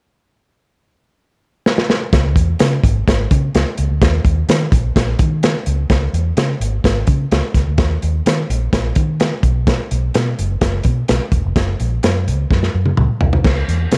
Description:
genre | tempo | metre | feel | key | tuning
uptempo 1960s-style soul | 127 BPM | 4/4 | straight | unclear | A4 = 440 Hz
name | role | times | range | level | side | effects
crunchy breakbeat drum kit | drums | 1.7-14.0 s | crash cymbal, hi-hat, kick drum, snare drum, toms | -18 LUFS | equal | none
vintage muted fingered electric bass | bass | 2.1-14.0 s | E1 to D#3 | -20 LUFS | equal | none
room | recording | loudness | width
little or no reverb | cassette tape | -16 LUFS | mono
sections
0.2-2.1 A section; 2.1-5.9 B section; 5.9-14.0 C section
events
drum fill 1.7-2.1, 12.5-13.4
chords
none

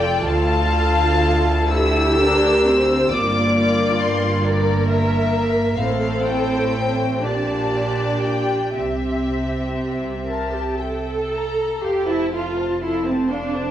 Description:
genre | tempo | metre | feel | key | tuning
classical, slow romantic movement for string orchestra | 37-45 BPM (dotted quarters) | 6/8 | rubato | F major | A4 = 440 Hz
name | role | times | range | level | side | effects
warm studio violin section | melody | 0.0-13.7 s | D5 to E6 | -25 LUFS | left 4 dB | none
dark studio violin section | second line | 0.0-13.7 s | A4 to Bb5 | -25 LUFS | left 3 dB | none
warm studio viola section | accompaniment | 0.0-13.7 s | Bb3 to Bb4 | -21 LUFS | right 1 dB | none
dark studio double bass section | bass | 0.0-13.7 s | F1 to D2 | -26 LUFS | right 2 dB | none
warm studio cello section | bass | 0.0-13.7 s | D2 to C3 | -26 LUFS | right 1 dB | none
room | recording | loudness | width
wet recital hall reverb, RT60 1.6 s | worn, warbling old tape, cassette tape, warbly pitch drift | -17 LUFS | side -11 dB against mid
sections
0.0-11.8 A section; 11.8-13.7 B section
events
none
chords
0.2 Dm; 3.1 Gm7; 5.8 Am7; 7.2 Gm/Bb; 8.8 C; 11.8 F

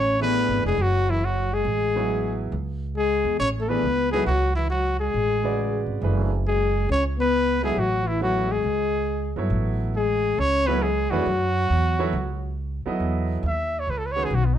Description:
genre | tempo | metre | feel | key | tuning
modal jazz | 138 BPM | 4/4 | swing 66% on 8ths | F# minor | A4 = 440 Hz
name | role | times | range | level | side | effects
clear trumpet | melody | 0.0-14.6 s | B3 to E5 | -24 LUFS | equal | none
breathy trombone | second line | 0.0-12.6 s | E3 to C#4 | -27 LUFS | left 6 dB | none
upright bass | bass | 0.0-14.6 s | E#1 to G2 | -26 LUFS | equal | none
clear baby grand piano | accompaniment | 0.2-14.3 s | C#3 to E5 | -28 LUFS | right 4 dB | none
room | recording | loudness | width
light reverb | dark, warm production | -21 LUFS | side -10 dB against mid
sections
0.0-13.0 A section; 13.0-14.6 B section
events
trumpet solo 13.0-14.6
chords
0.0 F#m11; 13.0 C#m11

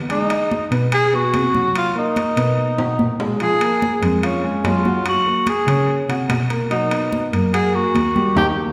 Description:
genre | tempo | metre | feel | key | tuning
Afro-Cuban jazz | 145 BPM | 4/4 | straight | unclear | A4 = 440 Hz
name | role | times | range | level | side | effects
warm grand piano | accompaniment | 0.0-8.5 s | F3 to G#5 | -26 LUFS | equal | none
dark cello | bass | 0.0-8.5 s | D#2 to Fb3 | -24 LUFS | equal | none
breathy tenor saxophone | melody | 0.1-8.5 s | Db4 to Ab4 | -22 LUFS | equal | none
congas | percussion | 0.1-8.5 s | none | -29 LUFS | equal | none
timbales | percussion | 0.1-8.5 s | none | -30 LUFS | equal | none
room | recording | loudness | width
wet scoring stage reverb, RT60 1.6 s | recorded in a church or concert hall | -18 LUFS | mono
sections
0.0-8.7 A section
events
drum fill 2.8-3.4; band accent 8.4-8.7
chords
0.1 Emaj7; 1.8 Cm7b5; 2.6 B6; 3.4 Bbm7; 5.1 Gbadd9; 6.7 Bmaj7

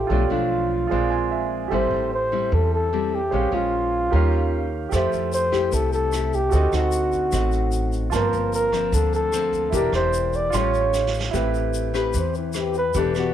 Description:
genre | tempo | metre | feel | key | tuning
bossa nova | 149 BPM | 4/4 | straight | unclear | A4 = 440 Hz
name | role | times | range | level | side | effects
breathy flugelhorn | melody | 0.0-13.3 s | E4 to D5 | -24 LUFS | equal | none
clear concert grand piano | accompaniment | 0.0-13.3 s | Bb3 to B#5 | -28 LUFS | right 10 dB | none
nylon-string guitar | accompaniment | 0.0-13.3 s | G2 to B4 | -27 LUFS | left 9 dB | none
upright bass | bass | 0.0-13.3 s | E1 to F2 | -25 LUFS | equal | none
vintage brush drum kit | drums | 4.9-13.2 s | hi-hat, kick drum, rim click, snare drum | -32 LUFS | right 2 dB | none
egg shaker | percussion | 4.9-13.3 s | none | -38 LUFS | left 10 dB | none
room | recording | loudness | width
light reverb, studio ambience | 1960s-style stereo with parts hard left and right | -20 LUFS | side -10 dB against mid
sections
0.0-11.3 A section; 11.3-13.3 B section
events
grand piano fill 0.9-1.7; drum fill 10.9-11.3; flugelhorn solo 11.3-13.3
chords
0.1 Bm7b5; 0.9 Bb9; 1.7 Am7; 3.3 Bbm7; 4.1 Eb9; 4.9 Fmaj9; 6.5 D7b9; 8.1 Gm11; 9.7 Em7b5; 10.5 A7alt; 11.3 Am9

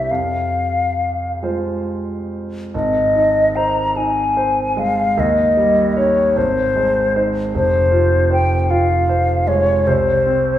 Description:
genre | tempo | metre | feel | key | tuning
classical, romantic duo for flute and grand piano | 44-52 BPM (dotted quarters) | 6/8 | rubato | Ab major | A4 = 440 Hz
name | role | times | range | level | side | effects
hollow concert flute | melody | 0.0-10.6 s | C5 to Bb5 | -16 LUFS | left 2 dB | none
clear concert grand piano | accompaniment | 0.0-10.6 s | F1 to Db5 | -19 LUFS | right 2 dB | none
room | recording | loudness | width
wet recital hall reverb, RT60 1.3 s | heard from further back in the room | -14 LUFS | side -12 dB against mid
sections
0.0-2.7 A section; 2.7-10.6 B section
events
none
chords
0.1 Fm; 2.7 Ab; 5.2 Eb7; 6.4 Ab; 7.5 Fm; 9.9 N.C.

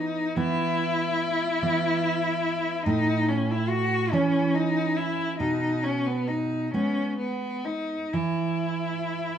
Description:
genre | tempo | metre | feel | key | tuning
romantic duo for cello and classical guitar | 41-49 BPM (dotted quarters) | 12/8 | rubato | unclear | A4 = 445 Hz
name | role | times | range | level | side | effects
rich cello | melody | 0.0-9.4 s | B3 to F#4 | -26 LUFS | left 2 dB | none
nylon-string guitar | accompaniment | 0.0-9.4 s | A2 to C#4 | -27 LUFS | right 4 dB | none
room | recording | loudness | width
moderate large studio reverb, RT60 1.1 s | band playing live in one room | -24 LUFS | side -9 dB against mid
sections
0.0-9.4 A section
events
none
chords
0.0 E5; 2.9 A; 5.4 B69; 8.1 N.C.

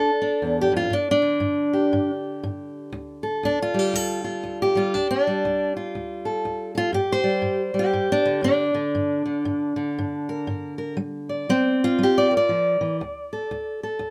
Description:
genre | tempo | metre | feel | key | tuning
acoustic country blues, solo or duo | 119 BPM | 4/4 | swing 61% on 8ths | unclear | A4 = 436 Hz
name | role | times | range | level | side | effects
fingerpicked steel-string acoustic guitar | solo | 0.0-14.1 s | D2 to D5 | -24 LUFS | equal | none
room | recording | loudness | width
light reverb | close, detailed microphones | -23 LUFS | mono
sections
0.0-14.1 A section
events
none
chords
0.0 Dm; 0.9 G5; 2.9 Dm; 6.9 Gm; 13.0 D5

